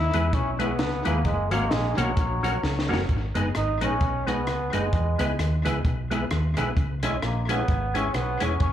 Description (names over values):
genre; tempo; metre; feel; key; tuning
ska; 130 BPM; 4/4; swing 58% on 8ths; G# minor; A4 = 440 Hz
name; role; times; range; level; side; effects
bright trombone; melody; 0.0-8.7 s; F#3 to E4; -28 LUFS; equal; tape echo, slapback echo
hollow-body short-scale fingered electric bass; bass; 0.0-8.7 s; E1 to E2; -27 LUFS; equal; none
vintage hollow-body jazz guitar; accompaniment; 0.1-8.5 s; F#3 to G#4; -30 LUFS; right 4 dB; slapback echo
percussive tonewheel organ; stabs; 0.1-8.6 s; A#3 to C#5; -32 LUFS; left 5 dB; overdrive, chorus vibrato, fast rotary speaker, tape echo, slapback echo
compact cocktail drum kit; drums; 0.1-8.7 s; hi-hat, kick drum, rim click, snare drum; -28 LUFS; equal; tape echo
room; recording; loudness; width
light reverb; live gig heard through the venue's PA, club reverb; -22 LUFS; side -10 dB against mid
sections
0.0-3.1 A section; 3.1-8.7 B section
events
drum fill 2.6-3.1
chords
0.0 E; 1.3 F#; 3.1 G#m; 4.9 E; 6.8 C#m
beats
0.33 0.79 | 1.25 1.71 2.17 2.63 | 3.09 3.55 4.01 4.47 | 4.93 5.39 5.85 6.31 | 6.77 7.23 7.69 8.15 | 8.61